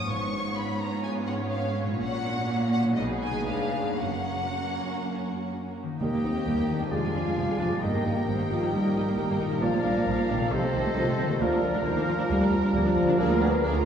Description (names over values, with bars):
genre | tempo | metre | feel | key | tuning
classical, dramatic, fast romantic movement for symphony orchestra | 116-137 BPM | 4/4 | rubato | F# major, Eb major from 6.0 s | A4 = 439 Hz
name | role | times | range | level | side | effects
warm symphonic violin section | melody | 0.0-13.9 s | Bb4 to C#6 | -36 LUFS | left 4 dB | none
dark symphonic violin section | second line | 0.0-13.8 s | E#4 to C#5 | -37 LUFS | left 1 dB | none
rich symphonic viola section | accompaniment | 0.0-13.8 s | Eb3 to F4 | -34 LUFS | right 2 dB | none
concert harp | arpeggios | 0.0-13.9 s | F2 to C#5 | -34 LUFS | left 4 dB | none
rich symphonic cello section | bass | 0.0-13.9 s | D2 to C#3 | -32 LUFS | right 3 dB | none
rich chamber double bass section | bass | 0.1-13.9 s | F1 to Eb2 | -35 LUFS | right 2 dB | none
bright clarinet | second line | 6.0-13.9 s | G4 to Bb4 | -36 LUFS | right 1 dB | none
clear oboe | second line | 6.0-13.9 s | Bb4 to Eb5 | -37 LUFS | right 2 dB | none
warm bassoon | accompaniment | 6.0-13.8 s | C3 to F3 | -33 LUFS | right 2 dB | none
mellow French horn section | sustained chords | 6.0-13.9 s | Eb3 to C4 | -27 LUFS | left 1 dB | none
timpani | percussion | 6.0-6.7 s | Eb3 | -38 LUFS | equal | none
silver concert flute | second line | 6.9-13.8 s | Bb4 to F5 | -36 LUFS | right 1 dB | none
room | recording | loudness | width
wet concert hall reverb, RT60 2.6 s | studio ambience | -24 LUFS | side -8 dB against mid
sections
0.0-6.0 A section; 6.0-13.9 B section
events
none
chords
0.1 C#7/G#; 2.0 F#/A#; 3.0 G#m7/B; 3.5 C#7b9; 4.0 F#; 6.0 Eb; 6.9 Ddim/F; 7.8 Eb/G; 9.6 Bb; 10.5 Adim/C; 11.4 Bb/D; 13.2 Bb7/D